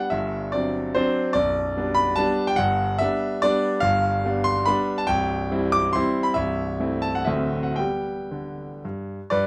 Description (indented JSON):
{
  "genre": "classical, romantic triple-time dance for piano with dotted rhythms",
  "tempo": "110-155 BPM",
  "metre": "3/4",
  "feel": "rubato",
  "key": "G major",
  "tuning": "A4 = 440 Hz",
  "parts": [
    { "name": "bright concert grand piano", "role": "solo", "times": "0.0-9.5 s", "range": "B0 to D6", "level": "-24 LUFS", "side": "equal", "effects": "none" }
  ],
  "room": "light reverb",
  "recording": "none",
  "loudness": "-23 LUFS",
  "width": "mono",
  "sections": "0.0-9.3 A section",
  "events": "none",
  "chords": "0.1 D7/G; 1.4 G/B; 2.6 G; 5.1 C; 6.4 Am/C; 7.3 D7; 7.8 G",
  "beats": "| 0.11 0.54 0.96 | 1.36 1.76 2.18 | 2.59 3.01 3.43 | 3.83 4.25 4.68 | 5.08 5.52 5.96 | 6.37 6.80 7.27 | 7.77 8.31 8.83 | 9.31"
}